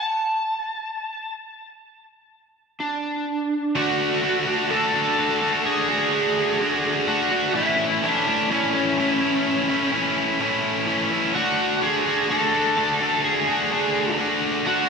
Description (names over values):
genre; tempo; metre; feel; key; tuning
rock; 63 BPM; 4/4; straight; unclear; A4 = 440 Hz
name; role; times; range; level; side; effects
overdriven slide guitar; melody; 0.0-14.9 s; C#4 to A5; -23 LUFS; equal; analog chorus, ping-pong delay
tight distorted guitar; riff; 3.8-14.9 s; A2 to F#4; -21 LUFS; equal; distortion
room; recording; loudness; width
wet plate reverb, RT60 2.3 s; dreamy mix soaked in reverb; -20 LUFS; side -5 dB against mid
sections
0.0-3.8 A section; 3.8-14.9 B section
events
none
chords
0.0 N.C.; 3.8 D; 7.6 A; 11.3 D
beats
0.90 1.85 2.81 | 3.76 4.71 5.66 6.61 | 7.56 8.50 9.45 10.40 | 11.35 12.30 13.24 14.19